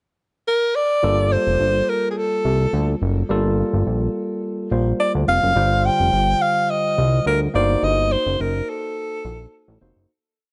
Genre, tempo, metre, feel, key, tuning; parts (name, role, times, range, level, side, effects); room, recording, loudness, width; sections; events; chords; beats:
early-eighties boogie funk; 106 BPM; 4/4; straight; G minor; A4 = 440 Hz
breathy alto saxophone; melody; 0.5-9.8 s; Ab4 to G5; -22 LUFS; equal
barky tine electric piano; accompaniment; 1.0-10.1 s; D3 to C5; -27 LUFS; equal
fat analog bass; bass; 1.0-10.1 s; F1 to D2; -23 LUFS; equal
small room ambience; nothing above 11.0 kHz; -20 LUFS; mono
0.0-1.0 pickup bar; 1.0-10.1 verse
fade-out 7.8-10.1
0.0 N.C.; 1.0 Gm9; 5.6 Ebmaj13; 7.5 D7b9b13 (rootless)
0.47 | 1.04 1.60 2.17 2.74 | 3.30 3.87 4.43 5.00 | 5.57 6.13 6.70 7.26 | 7.83 8.40 8.96 9.53